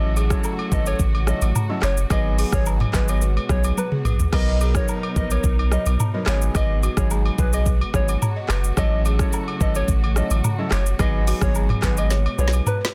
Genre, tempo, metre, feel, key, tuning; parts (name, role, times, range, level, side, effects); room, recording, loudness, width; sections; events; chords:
afrobeats; 108 BPM; 4/4; straight; A4 = 440 Hz
soft struck synth lead; melody; 0.0-12.8 s; G#4 to D#5; -32 LUFS; equal; chorus, delay
clear grand piano; accompaniment; 0.0-12.6 s; F#3 to A#4; -32 LUFS; equal
muted studio string section; sustained chords; 0.0-12.9 s; B2 to A#4; -36 LUFS; equal
punchy sub bass; bass; 0.0-12.6 s; F#1 to B1; -23 LUFS; equal
balafon; riff; 0.2-12.9 s; F#4 to D#5; -37 LUFS; equal; delay
afro-pop drum kit; drums; 0.2-12.9 s; crash cymbal, handclaps, hi-hat, kick drum, rim click, shaker, snare drum, toms; -25 LUFS; equal
agogo bells and woodblock; percussion; 0.2-12.8 s; -35 LUFS; equal
small room ambience; dense, heavily limited modern master; -21 LUFS; mono
0.0-12.9 A section
drum fill 3.8-4.3, 12.1-12.9
0.0 A6; 2.1 G#m7; 4.3 Bmaj7; 6.3 G#m7; 8.8 A6; 11.0 G#m7